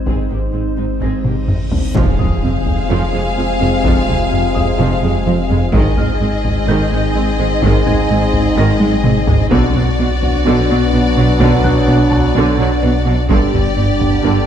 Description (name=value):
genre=cinematic, hybrid orchestral and electronic film score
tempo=127 BPM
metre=4/4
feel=straight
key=F dorian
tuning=A4 = 439 Hz
part: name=glassy FM pad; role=sustained chords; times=0.0-14.5 s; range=F#3 to D5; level=-22 LUFS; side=left 2 dB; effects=ensemble chorus, built-in reverb, low-pass filter
part: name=pure sine sub bass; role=bass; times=0.0-14.5 s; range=F1 to B1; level=-21 LUFS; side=equal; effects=none
part: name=felt-muted upright piano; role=texture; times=0.0-13.5 s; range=Eb5 to Bb6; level=-33 LUFS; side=left 2 dB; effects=digital delay
part: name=rich symphonic viola section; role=accompaniment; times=0.1-14.5 s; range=D3 to Ab4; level=-23 LUFS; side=right 2 dB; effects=low-pass filter
part: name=clear studio double bass section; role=bass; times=0.1-14.3 s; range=F1 to B1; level=-22 LUFS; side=right 3 dB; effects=none
part: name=rich studio cello section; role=bass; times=0.1-14.3 s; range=F2 to B2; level=-21 LUFS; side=right 2 dB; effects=none
part: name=taiko ensemble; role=drums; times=0.1-14.2 s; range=none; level=-19 LUFS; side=equal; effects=none
part: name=reverse cymbal and impact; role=sound effects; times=1.7-3.8 s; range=none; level=-23 LUFS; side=left 1 dB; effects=none
part: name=rich symphonic violin section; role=melody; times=2.0-14.5 s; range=D5 to F5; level=-23 LUFS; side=left 4 dB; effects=low-pass filter
part: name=warm symphonic violin section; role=second line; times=2.0-14.5 s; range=F#4 to Ab4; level=-25 LUFS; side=left 3 dB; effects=none
part: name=mellow French horn section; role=sustained chords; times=2.0-14.5 s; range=B3 to F4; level=-22 LUFS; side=left 1 dB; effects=low-pass filter
part: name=warm trombone section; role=sustained chords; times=2.0-14.5 s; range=Ab2 to Ab3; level=-25 LUFS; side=right 2 dB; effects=low-pass filter
part: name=smooth synth bass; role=riff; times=2.0-14.4 s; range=F2 to B3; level=-20 LUFS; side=right 2 dB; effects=low-pass filter
room=moderate scoring stage reverb, RT60 1.9 s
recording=dark, warm production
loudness=-12 LUFS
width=side -9 dB against mid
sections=0.0-2.0 A section; 2.0-14.5 B section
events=filter sweep 0.0-2.0; drum fill 1.2-2.0, 8.8-9.5; reverse cymbal 1.7; impact 2.0-3.8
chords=0.0 Ab; 2.0 Fm; 5.7 Ab; 9.5 Bm; 13.3 G